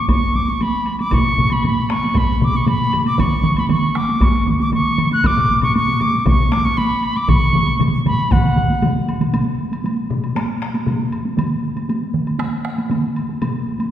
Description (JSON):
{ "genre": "japanese traditional, taiko drum ensemble", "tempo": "117 BPM", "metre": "4/4", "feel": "straight", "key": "unclear", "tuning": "A4 = 440 Hz", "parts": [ { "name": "wooden piccolo", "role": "melody", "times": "0.0-9.1 s", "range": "F#5 to F#6", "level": "-19 LUFS", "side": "equal", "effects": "none" }, { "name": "taiko ensemble", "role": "percussion", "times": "0.1-13.9 s", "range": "none", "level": "-21 LUFS", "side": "right 1 dB", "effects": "none" }, { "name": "taiko ensemble", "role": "percussion", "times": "0.1-8.4 s", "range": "none", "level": "-20 LUFS", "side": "equal", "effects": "none" }, { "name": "woodblock", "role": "percussion", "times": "0.1-13.9 s", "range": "none", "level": "-35 LUFS", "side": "left 1 dB", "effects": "none" }, { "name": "taiko ensemble", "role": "percussion", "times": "1.1-13.5 s", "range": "none", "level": "-22 LUFS", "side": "left 2 dB", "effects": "none" }, { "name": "taiko ensemble", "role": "percussion", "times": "3.2-13.0 s", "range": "none", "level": "-22 LUFS", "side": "right 2 dB", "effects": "none" } ], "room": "wet concert hall reverb, RT60 1.9 s", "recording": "heard from further back in the room", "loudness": "-15 LUFS", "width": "side -11 dB against mid", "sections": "0.0-9.3 A section; 9.3-13.9 B section", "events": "none", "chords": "none", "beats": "0.08 0.60 | 1.12 1.63 2.15 2.67 | 3.18 3.70 4.21 4.73 | 5.24 5.75 6.27 6.78 | 7.29 7.81 8.32 8.83 | 9.34 9.85 10.36 10.87 | 11.38 11.89 12.40 12.91 | 13.41" }